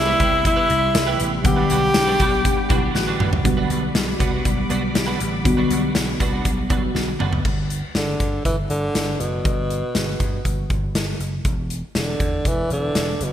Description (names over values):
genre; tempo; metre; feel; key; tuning
1980s-style pop; 120 BPM; 4/4; straight; G major; A4 = 441 Hz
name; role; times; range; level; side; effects
clear tenor saxophone; melody; 0.0-2.9, 8.0-13.3 s; B2 to G4; -22 LUFS; equal; digital delay
mellow FM electric piano; accompaniment; 0.0-7.5 s; C3 to F#5; -24 LUFS; left 1 dB; chorus, phaser
soft string machine; sustained chords; 0.0-7.4 s; G3 to D6; -30 LUFS; equal; ensemble chorus
vintage slap bass; bass; 0.0-13.3 s; E1 to G2; -26 LUFS; equal; none
twelve-string electric guitar; riff; 0.1-7.4 s; G3 to B4; -28 LUFS; right 5 dB; ensemble chorus, digital delay
big rock drum kit; drums; 0.2-13.3 s; crash cymbal, hi-hat, kick drum, snare drum, tambourine, toms; -22 LUFS; equal; gated reverb
marimba with hard mallets; second line; 2.0-3.4 s; B3 to F#4; -31 LUFS; left 3 dB; digital delay
room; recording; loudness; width
moderate lush hall reverb, RT60 2.3 s; bright 1980s-style digital production; -18 LUFS; side -10 dB against mid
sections
0.0-3.5 A section; 3.5-7.5 B section; 7.5-13.3 C section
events
drum fill 3.0-3.5, 7.0-7.5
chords
0.0 Cmaj7; 1.5 Gmaj7/B; 3.5 Gmaj7; 7.5 G; 11.5 E5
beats
0.45 0.95 | 1.45 1.95 2.45 2.95 | 3.45 3.95 4.45 4.95 | 5.45 5.95 6.45 6.95 | 7.45 7.95 8.45 8.95 | 9.45 9.95 10.45 10.95 | 11.45 11.95 12.45 12.95